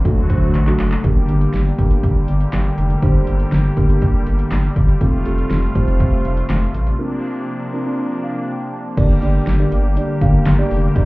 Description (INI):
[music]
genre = synth-pop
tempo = 121 BPM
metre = 4/4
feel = straight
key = G minor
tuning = A4 = 440 Hz
[part]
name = brassy analog pad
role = sustained chords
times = 0.0-11.1 s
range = C3 to G4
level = -22 LUFS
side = left 1 dB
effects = chorus
[part]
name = muted felt-like synth keys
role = accompaniment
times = 0.1-11.1 s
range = A3 to A5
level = -23 LUFS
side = right 2 dB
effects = chorus
[part]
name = round analog bass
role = bass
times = 0.1-11.1 s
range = F1 to D2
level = -17 LUFS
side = equal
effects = none
[part]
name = deep house drum kit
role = drums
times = 0.1-11.1 s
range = crash cymbal, handclaps, hi-hat, kick drum, snare drum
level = -18 LUFS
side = equal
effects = overdrive
[sound]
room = light reverb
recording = heard muffled through a wall, club reverb, EQ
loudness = -15 LUFS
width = side -21 dB against mid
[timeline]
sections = 0.0-1.0 A section; 1.0-9.0 B section; 9.0-11.1 A section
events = drum fill 0.5-1.0; break 7.0-9.0; synth keys fill 8.0-9.0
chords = 0.1 D; 1.0 Gm; 5.0 Fadd9; 7.0 Bbadd9; 9.0 Gm